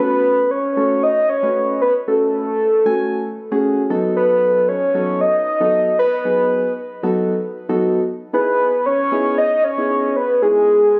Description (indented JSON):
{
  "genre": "pop",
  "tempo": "115 BPM",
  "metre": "4/4",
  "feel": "straight",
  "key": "F# dorian",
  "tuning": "A4 = 439 Hz",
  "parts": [
    { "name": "soft octave-layered synth lead", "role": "melody", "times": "0.0-11.0 s", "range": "G#4 to D#5", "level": "-18 LUFS", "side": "equal", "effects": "chorus, delay" },
    { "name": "soft electric-piano-like synth keys", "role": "accompaniment", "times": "0.0-10.8 s", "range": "F#3 to G#5", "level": "-23 LUFS", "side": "equal", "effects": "chorus" }
  ],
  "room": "light reverb, digital ambience",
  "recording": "recorded on a phone in the room, studio ambience",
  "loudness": "-17 LUFS",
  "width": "mono",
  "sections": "0.0-11.0 A section",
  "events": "none",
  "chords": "0.0 F#m; 3.9 B7/F#; 8.3 Emaj7",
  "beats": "0.51 1.03 1.55 | 2.08 2.60 3.12 3.64 | 4.16 4.68 5.21 5.73 | 6.25 6.77 7.29 7.82 | 8.34 8.86 9.38 9.90 | 10.42 10.95"
}